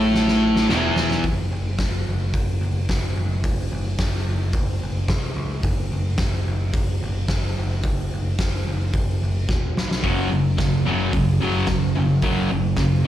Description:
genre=garage rock duo or trio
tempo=109 BPM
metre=4/4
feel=straight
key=unclear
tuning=A4 = 440 Hz
part: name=fuzz guitar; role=riff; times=0.0-1.2, 10.0-13.1 s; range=E2 to A3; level=-19 LUFS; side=equal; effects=distortion, slapback echo
part: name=growling picked electric bass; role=bass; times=0.0-13.0 s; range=E1 to C#2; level=-24 LUFS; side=equal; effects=overdrive
part: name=oversized low-tuned drum kit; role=drums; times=0.1-12.9 s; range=hi-hat, kick drum, snare drum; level=-24 LUFS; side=equal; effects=none
room=little or no reverb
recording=live gig heard through the venue's PA, club reverb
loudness=-19 LUFS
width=side -12 dB against mid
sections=0.0-1.2 A section; 1.2-13.1 B section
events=drum fill 0.1-1.2, 9.5-10.0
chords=0.0 Esus4; 1.2 N.C.; 10.0 F#5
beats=0.14 0.69 | 1.24 1.79 2.34 2.89 | 3.44 3.99 4.54 5.09 | 5.64 6.19 6.74 7.29 | 7.84 8.39 8.94 9.48 | 10.03 10.58 11.13 11.68 | 12.23 12.78

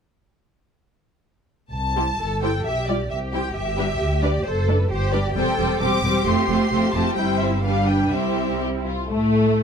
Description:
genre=quick classical-period movement for string orchestra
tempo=132 BPM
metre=2/4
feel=rubato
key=C major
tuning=A4 = 439 Hz
part: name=rich studio violin section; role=melody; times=1.7-9.6 s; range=A3 to D6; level=-26 LUFS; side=left 2 dB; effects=none
part: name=warm studio double bass section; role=bass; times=1.7-9.6 s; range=E1 to A2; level=-25 LUFS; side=equal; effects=none
part: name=rich studio violin section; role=second line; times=2.0-9.6 s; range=A3 to D5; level=-28 LUFS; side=left 2 dB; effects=none
part: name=warm studio viola section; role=accompaniment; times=2.0-9.6 s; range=G3 to F4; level=-23 LUFS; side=right 1 dB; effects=none
part: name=warm studio cello section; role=bass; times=2.2-9.6 s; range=A3 to A4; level=-27 LUFS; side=equal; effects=none
room=light reverb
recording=dark, warm production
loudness=-19 LUFS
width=side -7 dB against mid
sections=1.7-9.1 A section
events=none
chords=1.7 C; 2.7 G7/B; 3.1 C; 3.6 G5; 4.5 D7/F#; 4.9 G5; 5.4 C/E; 6.3 F; 7.2 C/G; 7.6 G7; 8.1 C; 9.1 N.C.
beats=| 1.73 2.19 | 2.65 3.11 | 3.56 4.01 | 4.46 4.91 | 5.35 5.80 | 6.26 6.71 | 7.17 7.64 | 8.12 8.61 | 9.09 9.55

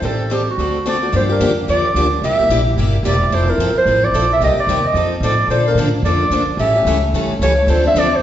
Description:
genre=acoustic string swing (jazz manouche)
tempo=220 BPM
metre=4/4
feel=swing 58% on 8ths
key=F major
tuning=A4 = 440 Hz
part: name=growling clarinet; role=melody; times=0.0-8.2 s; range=Gb4 to E5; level=-17 LUFS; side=right 1 dB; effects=none
part: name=picked plugged-in steel-string acoustic guitar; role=accompaniment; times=0.0-8.1 s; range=C3 to A4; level=-24 LUFS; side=right 4 dB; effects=none
part: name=picked steel-string acoustic guitar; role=accompaniment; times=0.0-8.1 s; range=C3 to A4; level=-21 LUFS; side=left 4 dB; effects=none
part: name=upright bass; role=bass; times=0.0-8.2 s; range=E1 to Bb2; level=-19 LUFS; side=equal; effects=none
room=wet recital hall reverb, RT60 1.3 s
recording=recorded in a church or concert hall, nothing above 7.7 kHz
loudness=-13 LUFS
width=side -11 dB against mid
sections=0.0-1.1 A section; 1.1-8.2 B section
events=none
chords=0.0 Am7b5; 0.6 D7; 1.1 Gm7; 2.2 C7; 3.3 Fmaj7; 4.4 Cm7; 4.9 F7; 5.5 Bbmaj7; 6.6 A7; 7.7 Dm7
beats=| 0.03 0.30 0.57 0.85 | 1.12 1.40 1.67 1.94 | 2.22 2.49 2.76 3.04 | 3.31 3.58 3.86 4.13 | 4.40 4.68 4.95 5.22 | 5.50 5.77 6.04 6.32 | 6.59 6.86 7.13 7.41 | 7.68 7.95

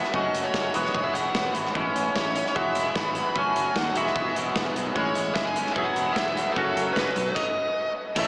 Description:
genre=indie rock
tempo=149 BPM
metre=4/4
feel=straight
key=E major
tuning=A4 = 445 Hz
part: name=dark smooth lead guitar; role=melody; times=0.0-8.3 s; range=A4 to B5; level=-30 LUFS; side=equal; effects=overdrive, tape echo
part: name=cranked stack guitar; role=riff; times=0.0-8.3 s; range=F#3 to A4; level=-34 LUFS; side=equal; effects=overdrive, ensemble chorus
part: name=twangy electric guitar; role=riff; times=0.0-8.3 s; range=F#2 to G#4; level=-31 LUFS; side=equal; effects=analog chorus, tape echo
part: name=big rock drum kit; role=drums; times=0.0-8.3 s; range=crash cymbal, hi-hat, kick drum, snare drum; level=-33 LUFS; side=equal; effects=none
part: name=fingered electric bass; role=bass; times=0.1-8.3 s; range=E1 to D#2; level=-39 LUFS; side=equal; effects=none
part: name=combo organ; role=sustained chords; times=8.2-8.3 s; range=A4 to C#6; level=-32 LUFS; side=equal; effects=subtle chorus
part: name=tambourine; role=percussion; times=8.2-8.3 s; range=none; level=-42 LUFS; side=equal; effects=none
room=wet huge ambient reverb, RT60 7.1 s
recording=dreamy mix soaked in reverb, small speaker sound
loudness=-26 LUFS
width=mono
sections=0.0-8.2 A section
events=stop 7.4-8.2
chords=0.1 F#m; 0.7 Eadd9; 1.8 Amaj7; 2.6 Eadd9; 3.4 F#m; 4.0 Eadd9; 5.0 Amaj7; 5.8 Eadd9; 6.6 F#m; 7.2 B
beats=| 0.14 0.55 0.95 1.35 | 1.75 2.15 2.56 2.96 | 3.36 3.76 4.16 4.56 | 4.96 5.37 5.77 6.17 | 6.57 6.97 7.37 7.77 | 8.17

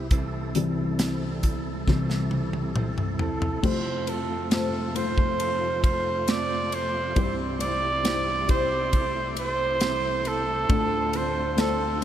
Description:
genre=pop ballad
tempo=68 BPM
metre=4/4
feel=straight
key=F major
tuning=A4 = 440 Hz
part: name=felt-muted upright piano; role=accompaniment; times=0.0-12.0 s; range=C2 to C5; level=-30 LUFS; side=left 4 dB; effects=lush chorus
part: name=tonewheel organ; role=sustained chords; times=0.0-12.0 s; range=C2 to A4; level=-32 LUFS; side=equal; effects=chorus vibrato, fast rotary speaker
part: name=nylon-string guitar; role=arpeggios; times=0.0-12.0 s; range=C3 to C5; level=-35 LUFS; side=right 5 dB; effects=analog delay
part: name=modern studio drum kit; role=drums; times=0.1-12.0 s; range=crash cymbal, hi-hat, kick drum, ride cymbal, snare drum, toms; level=-28 LUFS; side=equal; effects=none
part: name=warm flugelhorn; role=melody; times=3.2-12.0 s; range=A4 to D5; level=-26 LUFS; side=right 2 dB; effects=none
room=wet huge ambient reverb, RT60 7.6 s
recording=dreamy mix soaked in reverb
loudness=-23 LUFS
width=side -10 dB against mid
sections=0.0-3.6 A section; 3.6-12.0 B section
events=felt piano solo 0.0-3.6; drum fill 1.9-3.6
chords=0.0 C; 3.6 F; 7.2 C; 10.7 Dm7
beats=| 0.11 0.99 1.87 2.75 | 3.64 4.52 5.40 6.28 | 7.17 8.05 8.93 9.81 | 10.70 11.58

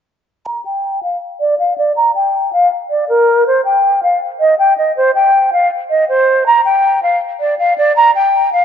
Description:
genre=hip hop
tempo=160 BPM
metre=4/4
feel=half-time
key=unclear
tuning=A4 = 443 Hz
part: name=breathy concert flute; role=melody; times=0.5-8.6 s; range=Bb4 to Bb5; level=-11 LUFS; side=equal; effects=low-pass filter
room=moderate concert hall reverb, RT60 2.2 s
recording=dark, warm production, nothing above 7.6 kHz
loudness=-11 LUFS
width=side -8 dB against mid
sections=0.5-8.6 A section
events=filter sweep on flute 0.5-8.6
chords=none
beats=| 0.47 0.84 1.22 1.59 | 1.97 2.34 2.71 3.09 | 3.46 3.84 4.21 4.59 | 4.96 5.34 5.71 6.09 | 6.46 6.84 7.21 7.59 | 7.96 8.34

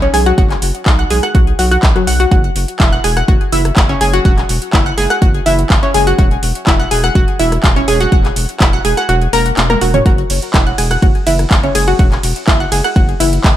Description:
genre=progressive house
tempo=124 BPM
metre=4/4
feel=straight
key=unclear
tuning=A4 = 440 Hz
part: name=analog pluck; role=arpeggios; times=0.0-13.2 s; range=F#3 to F#6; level=-15 LUFS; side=equal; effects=chorus, vintage 12-bit sampler grit, sidechain pumping, ping-pong delay
part: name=round analog bass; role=bass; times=0.0-13.5 s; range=E1 to B1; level=-17 LUFS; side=equal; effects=sidechain pumping
part: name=pop drum kit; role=drums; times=0.0-13.5 s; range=handclaps, hi-hat, ride cymbal, rim click, toms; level=-18 LUFS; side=equal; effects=small room ambience
part: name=electronic kick drum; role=drums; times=0.4-13.5 s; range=none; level=-12 LUFS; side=equal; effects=small room ambience
room=little or no reverb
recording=none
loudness=-10 LUFS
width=side -12 dB against mid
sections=0.0-13.6 A section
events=kick drops out 9.1-10.1; drum fill 9.6-10.1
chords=0.0 B; 2.3 F#5; 6.2 C#m/E; 10.1 F#5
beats=| 0.38 0.86 1.35 1.83 | 2.31 2.80 3.28 3.77 | 4.25 4.73 5.22 5.70 | 6.19 6.67 7.15 7.64 | 8.12 8.61 9.09 9.57 | 10.06 10.54 11.02 11.51 | 11.99 12.48 12.96 13.44

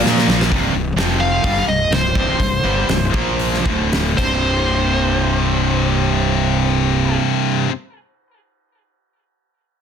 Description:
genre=hard rock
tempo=110-130 BPM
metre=4/4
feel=straight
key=unclear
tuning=A4 = 440 Hz
part: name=heavy high-gain guitar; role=riff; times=0.0-7.7 s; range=C2 to Bb3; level=-21 LUFS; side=left 12 dB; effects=distortion
part: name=high-gain distorted guitar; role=riff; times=0.0-0.5 s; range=Bb2 to Bb4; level=-22 LUFS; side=left 1 dB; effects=distortion
part: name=overdriven electric guitar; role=riff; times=0.0-7.7 s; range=C2 to Bb3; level=-21 LUFS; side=right 10 dB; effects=none
part: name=fuzz fingered electric bass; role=bass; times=0.0-7.2 s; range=C1 to Bb2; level=-21 LUFS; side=equal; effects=overdrive
part: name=huge arena drum kit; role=drums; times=0.1-4.3 s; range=crash cymbal, hi-hat, kick drum, snare drum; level=-22 LUFS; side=equal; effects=none
part: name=dark smooth lead guitar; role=melody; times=1.2-7.2 s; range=C5 to F5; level=-22 LUFS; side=equal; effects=overdrive, plate reverb, digital delay
room=light reverb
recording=dense, heavily limited modern master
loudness=-15 LUFS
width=side -7 dB against mid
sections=0.5-4.4 A section; 4.4-8.8 B section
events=drum fill 0.0-0.5, 4.2; slowing down 0.5-4.4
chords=0.0 Bb; 0.5 C5; 1.0 F5; 1.4 C5; 3.1 Bb5; 3.6 D5; 4.2 C5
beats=0.04 | 0.50 0.97 1.43 1.91 | 2.39 2.88 3.38 3.90 | 4.44 4.99 5.53 6.08 | 6.62 7.17

